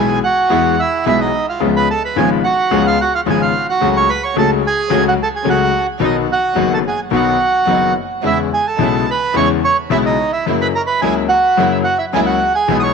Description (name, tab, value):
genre	tango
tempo	108 BPM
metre	4/4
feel	rubato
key	unclear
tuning	A4 = 439 Hz
part	bandoneon	melody	0.0-12.9 s	D#4 to D#6	-15 LUFS	right 4 dB	tape echo
part	warm concert grand piano	accompaniment	0.0-12.9 s	F#1 to G#4	-17 LUFS	left 10 dB	none
part	dark studio string section	stabs	0.0-12.9 s	B2 to E4	-23 LUFS	right 13 dB	tape echo
room	light reverb, studio reverb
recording	1960s-style stereo with parts hard left and right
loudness	-13 LUFS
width	side -5 dB against mid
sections	0.0-12.9 A section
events	none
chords	0.0 E; 1.6 C#7; 3.8 F#m/C#; 6.0 B; 8.2 E6; 10.5 F#7